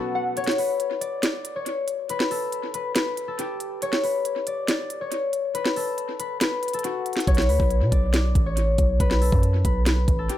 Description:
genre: hip hop, trap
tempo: 139 BPM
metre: 4/4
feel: half-time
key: B minor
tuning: A4 = 440 Hz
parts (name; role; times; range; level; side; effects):
- concert harp; melody; 0.0-10.4 s; F#4 to D5; -26 LUFS; left 3 dB; low-pass filter, tape echo
- trap drum kit; drums; 0.4-10.4 s; hi-hat, kick drum, snare drum; -25 LUFS; equal; tape echo
- distorted 808-style bass; bass; 7.3-10.3 s; A1 to B2; -21 LUFS; equal; distortion
room: studio reverb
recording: echo-heavy mix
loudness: -21 LUFS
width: side -13 dB against mid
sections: 0.4-10.4 A section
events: break 0.0-0.4; kick muted 0.4-7.3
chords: 0.4 N.C.; 7.3 Bmadd9; 9.0 Gmaj9 (rootless)

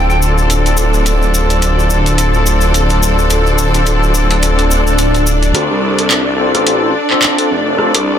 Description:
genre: glitch hop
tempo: 107 BPM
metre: 4/4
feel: swing 57% on 16ths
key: D minor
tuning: A4 = 440 Hz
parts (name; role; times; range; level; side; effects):
- clear horn section; stabs; 0.0-7.9 s; C4 to A4; -16 LUFS; left 2 dB; low-pass filter, ping-pong delay
- phased detuned saw bass; bass; 0.0-8.2 s; D1 to D2; -14 LUFS; equal; phaser, tube saturation, high-pass filter
- downlifter and swell; sound effects; 4.6-5.5 s; none; -23 LUFS; left 3 dB; none
- rich symphonic string section; texture; 0.0-8.2 s; D4 to D5; -18 LUFS; equal; none
- cabasa; percussion; 0.1-5.5 s; none; -22 LUFS; left 3 dB; none
- drum and bass drum kit; drums; 0.5-8.0 s; handclaps, hi-hat, rim click; -16 LUFS; equal; none
room: light reverb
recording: dense, heavily limited modern master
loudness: -10 LUFS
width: side -9 dB against mid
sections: 0.0-5.5 A section; 5.5-8.2 B section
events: swell 4.6-5.5; build-up 5.5-8.2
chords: 0.0 Dm7

